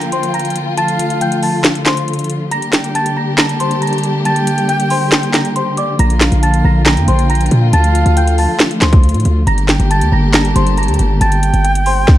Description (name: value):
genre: hip hop, trap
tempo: 138 BPM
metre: 4/4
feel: half-time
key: unclear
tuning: A4 = 440 Hz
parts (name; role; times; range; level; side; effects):
- small celesta; melody; 0.0-12.2 s; C5 to Bb6; -19 LUFS; left 1 dB; ping-pong delay
- silver concert flute; second line; 0.0-12.2 s; F5 to A5; -22 LUFS; right 4 dB; ping-pong delay
- warm symphonic string section; sustained chords; 0.0-12.1 s; D3 to G4; -18 LUFS; left 1 dB; none
- trap drum kit; drums; 0.0-12.2 s; handclaps, hi-hat, kick drum, snare drum; -14 LUFS; equal; vintage 12-bit sampler grit
- hard-hitting 808-style bass; bass; 6.0-12.1 s; G1 to Bb2; -13 LUFS; equal; none
room: small room ambience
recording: dark, warm production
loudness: -11 LUFS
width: side -13 dB against mid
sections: 0.0-12.2 A section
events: break 0.0-6.0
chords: 0.0 Bb; 0.8 Dm; 2.5 Gm; 6.0 Bb; 7.7 Dm; 9.5 Gm